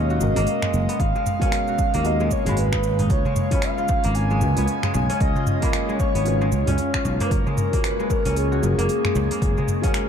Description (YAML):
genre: organic downtempo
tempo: 114 BPM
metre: 4/4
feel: swing 59% on 16ths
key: unclear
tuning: A4 = 440 Hz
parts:
  - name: breathy flute-like synth lead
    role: melody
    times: 0.0-10.1 s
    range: G#4 to G#5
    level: -26 LUFS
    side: equal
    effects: lush chorus, tape echo, shimmer reverb
  - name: felt-muted upright piano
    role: accompaniment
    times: 0.0-10.1 s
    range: G#3 to B5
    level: -31 LUFS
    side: left 1 dB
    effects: sidechain pumping, ping-pong delay, shimmer reverb
  - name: airy breathy pad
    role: sustained chords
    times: 0.0-10.1 s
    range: B2 to E#5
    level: -32 LUFS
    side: right 2 dB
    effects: chorus, sidechain pumping, shimmer reverb
  - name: kora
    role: arpeggios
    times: 0.0-10.1 s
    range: G#3 to F#4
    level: -28 LUFS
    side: left 2 dB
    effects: ping-pong delay, shimmer reverb
  - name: sustaining fretless electric bass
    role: bass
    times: 0.0-9.5 s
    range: F#1 to D#2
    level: -22 LUFS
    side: equal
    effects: analog chorus, sidechain pumping
  - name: deep house drum kit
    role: drums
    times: 0.1-10.1 s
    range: finger snaps, hi-hat, shaker, toms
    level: -28 LUFS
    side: equal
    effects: none
  - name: electronic kick drum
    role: drums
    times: 1.0-9.9 s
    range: none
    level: -24 LUFS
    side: equal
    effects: none
  - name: darbuka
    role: percussion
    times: 3.1-9.7 s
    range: none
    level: -30 LUFS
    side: equal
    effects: none
  - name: wind-like tuned noise texture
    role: texture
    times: 4.0-10.1 s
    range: C#5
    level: -36 LUFS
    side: right 1 dB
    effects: built-in reverb, shimmer reverb
room: moderate lush hall reverb, RT60 1.8 s, digital ambience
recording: dark, warm production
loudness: -19 LUFS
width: side -8 dB against mid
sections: 0.0-10.1 A section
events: none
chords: 0.0 G#m9; 3.1 C#7; 7.3 F#maj9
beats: 0.47 | 1.00 1.52 2.05 2.58 | 3.10 3.63 4.15 4.68 | 5.21 5.73 6.26 6.79 | 7.31 7.84 8.36 8.89 | 9.42 9.94